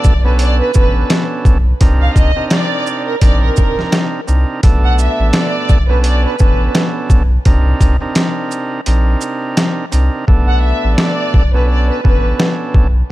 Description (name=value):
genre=hip hop, boom-bap hip-hop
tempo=85 BPM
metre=4/4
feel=swing 58% on 16ths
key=unclear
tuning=A4 = 440 Hz
part: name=warm studio violin section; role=melody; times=0.0-12.4 s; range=Bb4 to F#5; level=-20 LUFS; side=right 1 dB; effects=high-pass filter, low-pass filter, ping-pong delay
part: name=overdriven tonewheel organ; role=accompaniment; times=0.0-12.9 s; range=B2 to Bb4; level=-20 LUFS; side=right 3 dB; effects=cassette tape, high-pass filter, low-pass filter
part: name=soft dub sub bass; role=bass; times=0.0-13.0 s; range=A1 to C2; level=-13 LUFS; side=equal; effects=none
part: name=trip hop sampler-style drum kit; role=drums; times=0.0-12.9 s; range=hi-hat, kick drum, shaker, snare drum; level=-13 LUFS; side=equal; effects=none
room=digital ambience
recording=none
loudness=-11 LUFS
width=side -16 dB against mid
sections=0.0-10.3 A section; 10.3-13.1 B section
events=kick muted 8.9-10.3; hi-hats muted 10.3-13.1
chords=0.0 Bm9; 1.8 Cm9; 4.6 Bm9; 7.5 Cm9; 10.3 Bm9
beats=0.40 1.10 | 1.81 2.52 3.22 3.93 | 4.63 5.34 6.05 6.75 | 7.46 8.16 8.87 9.57 | 10.28 10.99 11.69 12.40